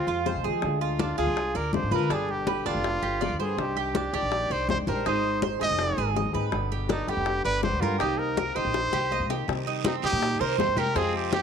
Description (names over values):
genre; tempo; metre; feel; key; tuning
latin, Cuban son and guajira; 163 BPM; 4/4; straight; C minor; A4 = 439 Hz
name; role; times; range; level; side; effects
bright trumpet; melody; 0.0-11.4 s; Eb4 to Eb5; -28 LUFS; equal; none
flamenco guitar; accompaniment; 0.0-11.4 s; B2 to Ab4; -34 LUFS; left 9 dB; none
Cuban tres; arpeggios; 0.0-11.4 s; C4 to Eb5; -30 LUFS; right 10 dB; none
upright bass; bass; 0.0-11.4 s; F1 to F3; -31 LUFS; right 1 dB; none
bongos; percussion; 0.1-11.4 s; none; -33 LUFS; left 11 dB; none
congas; percussion; 0.1-11.4 s; none; -34 LUFS; left 1 dB; none
guiro; percussion; 9.5-11.4 s; none; -39 LUFS; right 14 dB; none
room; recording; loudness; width
moderate echo chamber reverb, RT60 1.4 s, small room ambience; 1960s-style stereo with parts hard left and right; -24 LUFS; side -7 dB against mid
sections
0.0-9.5 A section; 9.5-11.4 A section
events
drum fill 8.7-9.5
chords
0.0 Fmadd9; 0.6 Ddim; 2.1 G; 3.6 Cmadd9; 5.1 Ab; 6.5 G; 8.0 Cm7; 9.5 Cm